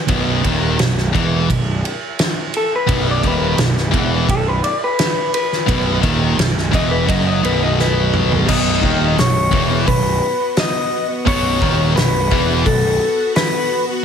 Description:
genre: quiet-loud alternative rock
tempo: 86 BPM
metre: 4/4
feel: straight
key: B mixolydian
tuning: A4 = 440 Hz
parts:
  - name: electric guitar through a small old amp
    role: melody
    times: 0.0-13.8 s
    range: A4 to D#5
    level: -20 LUFS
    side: left 3 dB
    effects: spring reverb, digital delay
  - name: thick fuzz guitar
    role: riff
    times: 0.1-12.9 s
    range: B1 to F#3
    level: -20 LUFS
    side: right 8 dB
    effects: distortion
  - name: tight distorted guitar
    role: riff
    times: 0.1-12.9 s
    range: B1 to F#3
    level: -21 LUFS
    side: left 10 dB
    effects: distortion
  - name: fuzz picked electric bass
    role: bass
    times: 0.1-13.0 s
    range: B0 to F#1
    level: -20 LUFS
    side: equal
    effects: overdrive
  - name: loose indie drum kit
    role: drums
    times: 0.1-13.5 s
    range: crash cymbal, hi-hat, kick drum, ride cymbal, snare drum, toms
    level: -20 LUFS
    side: equal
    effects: none
  - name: string machine, violins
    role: sustained chords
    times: 8.5-14.0 s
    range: B3 to F#4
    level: -27 LUFS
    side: equal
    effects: ensemble chorus
  - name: high-gain distorted guitar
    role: riff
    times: 8.5-12.9 s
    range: B1 to E3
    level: -23 LUFS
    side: left 1 dB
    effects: distortion
room: light reverb, small room ambience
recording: heavily compressed radio sound, multiband compression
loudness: -14 LUFS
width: side -7 dB against mid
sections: 0.0-8.5 A section; 8.5-14.0 B section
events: clean electric guitar solo 0.0-8.5; drum fill 7.8-8.5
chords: 0.0 B

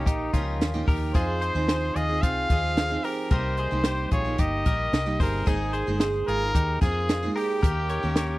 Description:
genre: jangly indie pop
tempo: 111 BPM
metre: 4/4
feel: straight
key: unclear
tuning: A4 = 440 Hz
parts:
  - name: clear trumpet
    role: melody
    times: 0.0-8.4 s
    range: Eb4 to F5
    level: -29 LUFS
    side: equal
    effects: slapback echo
  - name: picked twelve-string acoustic guitar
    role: accompaniment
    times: 0.0-8.4 s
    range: C3 to C5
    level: -30 LUFS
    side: right 4 dB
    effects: none
  - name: direct-recorded clean electric guitar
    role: arpeggios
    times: 0.0-8.4 s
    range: C4 to Db5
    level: -33 LUFS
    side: left 3 dB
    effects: slapback echo
  - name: vintage muted fingered electric bass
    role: bass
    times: 0.0-8.4 s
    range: G1 to F2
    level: -29 LUFS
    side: equal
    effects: none
  - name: compact cocktail drum kit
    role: drums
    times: 0.1-8.3 s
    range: hi-hat, kick drum, snare drum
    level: -24 LUFS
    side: equal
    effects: none
room: small room reverb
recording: dry, close 1970s-style studio recording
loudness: -22 LUFS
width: side -18 dB against mid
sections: 0.0-8.4 A section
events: none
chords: 0.0 Ebadd9; 1.2 Fm7; 3.3 Cm7; 7.6 Eb7

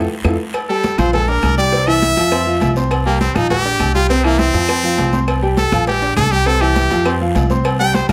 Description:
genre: latin, salsa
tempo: 203 BPM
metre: 4/4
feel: straight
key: C major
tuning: A4 = 437 Hz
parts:
  - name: clear baby grand piano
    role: accompaniment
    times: 0.0-8.1 s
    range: C3 to D6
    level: -21 LUFS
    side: equal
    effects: none
  - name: upright bass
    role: bass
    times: 0.0-8.1 s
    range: Bb1 to F2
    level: -21 LUFS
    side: equal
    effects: none
  - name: claves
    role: percussion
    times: 0.2-8.1 s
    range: none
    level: -35 LUFS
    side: equal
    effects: none
  - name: congas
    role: percussion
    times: 0.2-8.1 s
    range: none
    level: -25 LUFS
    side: equal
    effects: none
  - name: cowbell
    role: percussion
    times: 0.2-8.1 s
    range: none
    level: -29 LUFS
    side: equal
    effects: none
  - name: guiro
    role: percussion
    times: 0.2-8.1 s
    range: none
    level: -37 LUFS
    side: equal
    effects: none
  - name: timbales and agogo bells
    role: percussion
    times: 0.2-8.1 s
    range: none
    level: -28 LUFS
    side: equal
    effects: none
  - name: brilliant trumpet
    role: melody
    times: 0.7-8.1 s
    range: Bb3 to G5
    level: -20 LUFS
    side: equal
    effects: none
room: moderate large studio reverb, RT60 1.1 s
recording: none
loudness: -16 LUFS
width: mono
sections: 0.5-8.1 A section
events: drum fill 0.0-0.5; band accent 0.0-0.5; trumpet solo 0.5-8.1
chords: 0.0 Fmaj7; 0.5 Gm11; 1.1 Bb9; 1.7 C; 2.3 F5; 2.9 C5; 3.5 Bb9; 4.1 C; 4.7 F5; 5.3 C5; 5.9 Bb9; 6.5 C; 7.1 F5

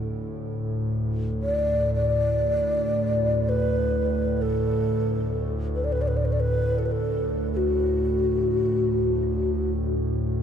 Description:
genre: world meditative, free-time meditation music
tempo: free time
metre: none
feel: none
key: D major pentatonic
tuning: A4 = 441 Hz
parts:
  - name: warbly tape-like pad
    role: drone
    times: 0.0-10.4 s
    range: D2 to A2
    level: -25 LUFS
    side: equal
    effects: chorus, built-in reverb
  - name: crotales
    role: texture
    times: 0.0-3.5 s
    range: D7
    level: -77 LUFS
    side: left 2 dB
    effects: none
  - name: breathy mellow low xiao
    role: melody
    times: 1.4-9.7 s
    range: F#4 to D5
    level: -25 LUFS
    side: left 1 dB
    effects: ping-pong delay
room: moderate huge ambient reverb, RT60 7.1 s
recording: none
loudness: -22 LUFS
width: side -8 dB against mid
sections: 0.0-10.4 A section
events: none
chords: none

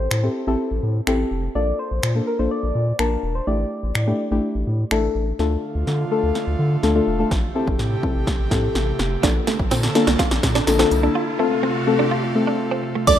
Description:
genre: dance-pop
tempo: 125 BPM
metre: 4/4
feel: straight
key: D minor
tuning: A4 = 440 Hz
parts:
  - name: soft struck synth lead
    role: melody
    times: 0.0-4.9 s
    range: Bb4 to D5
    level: -28 LUFS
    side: left 1 dB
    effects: chorus, ping-pong delay
  - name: deep mellow chord stab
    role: accompaniment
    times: 0.0-13.2 s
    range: F3 to A5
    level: -22 LUFS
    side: left 3 dB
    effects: chorus, sidechain pumping
  - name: round analog bass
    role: bass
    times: 0.0-13.2 s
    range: E1 to D3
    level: -22 LUFS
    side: equal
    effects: sidechain pumping
  - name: deep house drum kit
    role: drums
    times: 0.1-13.2 s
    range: crash cymbal, finger snaps, hi-hat, kick drum, snare drum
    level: -23 LUFS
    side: equal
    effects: none
  - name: airy breathy pad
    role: sustained chords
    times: 5.4-13.2 s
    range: C3 to A4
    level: -27 LUFS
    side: right 2 dB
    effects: chorus, sidechain pumping
  - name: riser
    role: sound effects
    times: 7.4-12.1 s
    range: none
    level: -32 LUFS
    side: right 1 dB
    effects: none
  - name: direct-recorded clean electric guitar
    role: riff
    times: 9.2-13.2 s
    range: A3 to F4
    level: -25 LUFS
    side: right 7 dB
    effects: analog chorus
  - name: tambourine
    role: percussion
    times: 9.2-13.2 s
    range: none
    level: -38 LUFS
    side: left 4 dB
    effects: none
  - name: analog pluck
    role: melody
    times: 13.1-13.2 s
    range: D5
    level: -13 LUFS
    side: right 4 dB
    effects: chorus, sidechain pumping
room: light reverb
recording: rough home demo mix, lossy compression artefacts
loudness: -18 LUFS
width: side -10 dB against mid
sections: 0.0-5.4 A section; 5.4-13.1 B section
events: build-up 5.4-13.1; drum fill 5.4-11.2; riser 7.4-13.1; break 11.2-13.1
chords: 0.0 Am7; 1.6 Bbmaj7; 3.5 A7sus4; 5.4 Dm; 7.3 Am7; 9.2 Bbmaj7; 11.2 F

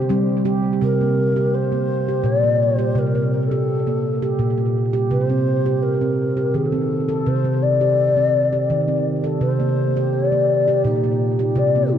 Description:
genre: world meditative, meditative tuned percussion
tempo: 84 BPM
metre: 3/4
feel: swing 55% on 16ths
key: unclear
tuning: A4 = 440 Hz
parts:
  - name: mellow hollow low Native American-style wooden flute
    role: melody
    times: 0.0-12.0 s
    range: Eb4 to D5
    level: -21 LUFS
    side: left 4 dB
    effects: tape echo
  - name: handpan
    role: arpeggios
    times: 0.0-12.0 s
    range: Bb2 to A4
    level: -18 LUFS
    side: right 2 dB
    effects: tape echo
room: wet cathedral reverb, RT60 5.1 s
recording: dark, warm production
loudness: -17 LUFS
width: side -9 dB against mid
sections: 0.8-12.0 A section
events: none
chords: 0.0 C5; 0.8 Gm; 5.1 Cm; 9.4 Gm

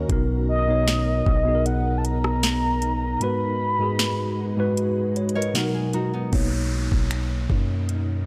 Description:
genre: contemporary R&B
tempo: 77 BPM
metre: 4/4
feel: straight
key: B major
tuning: A4 = 440 Hz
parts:
  - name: mellow tine electric piano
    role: accompaniment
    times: 0.0-8.3 s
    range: G#2 to A#5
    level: -27 LUFS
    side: equal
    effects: none
  - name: ethereal airy pad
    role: sustained chords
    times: 0.0-8.3 s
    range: B2 to B4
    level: -34 LUFS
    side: equal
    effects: ensemble chorus, built-in reverb, sidechain pumping
  - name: long sustained 808-style bass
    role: bass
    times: 0.0-8.2 s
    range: B1 to F#2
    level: -28 LUFS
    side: equal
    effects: none
  - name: smooth R&B drum kit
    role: drums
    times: 0.1-8.1 s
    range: finger snaps, hi-hat, kick drum, rim click, snare drum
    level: -27 LUFS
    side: equal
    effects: none
  - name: mellow horn-like synth lead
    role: melody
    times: 0.5-4.8 s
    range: D#5 to B5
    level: -28 LUFS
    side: equal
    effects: chorus, tape echo
  - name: nylon-string guitar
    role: arpeggios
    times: 5.4-6.5 s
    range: B3 to C#5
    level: -34 LUFS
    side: equal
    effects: tape echo
  - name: downlifter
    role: sound effects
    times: 6.3-8.3 s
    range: none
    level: -38 LUFS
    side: equal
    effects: none
room: light reverb, digital ambience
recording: none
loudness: -23 LUFS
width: mono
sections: 0.0-6.3 A section; 6.3-8.3 B section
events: kick muted 3.2-6.3; tine electric piano fill 4.8-6.3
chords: 0.1 Bmaj7; 3.2 G#m7; 5.5 Bmaj7; 6.3 Bmaj9

